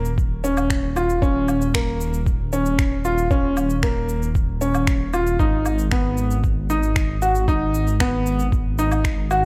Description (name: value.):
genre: piano and strings electronica.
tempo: 115 BPM.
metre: 4/4.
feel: straight.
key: Eb minor.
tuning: A4 = 440 Hz.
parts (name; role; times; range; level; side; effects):
clear concert grand piano; riff; 0.0-9.4 s; Bb3 to Gb4; -24 LUFS; equal; tape echo.
dark detuned saw bass; bass; 0.0-9.4 s; Eb1 to Ab1; -26 LUFS; equal; sidechain pumping.
electronic shaker, woodblock and finger snaps; drums; 0.1-9.4 s; none; -32 LUFS; equal; none.
electronic kick drum; drums; 0.2-9.2 s; none; -24 LUFS; equal; none.
room: moderate recital hall reverb, RT60 1.7 s.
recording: dark, warm production.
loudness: -21 LUFS.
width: mono.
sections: 0.0-9.4 A section.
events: none.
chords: 0.0 Eb5; 5.4 Abm.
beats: 0.18 0.70 | 1.22 1.74 2.27 2.79 | 3.31 3.83 4.35 4.87 | 5.40 5.92 6.44 6.96 | 7.48 8.01 8.53 9.05.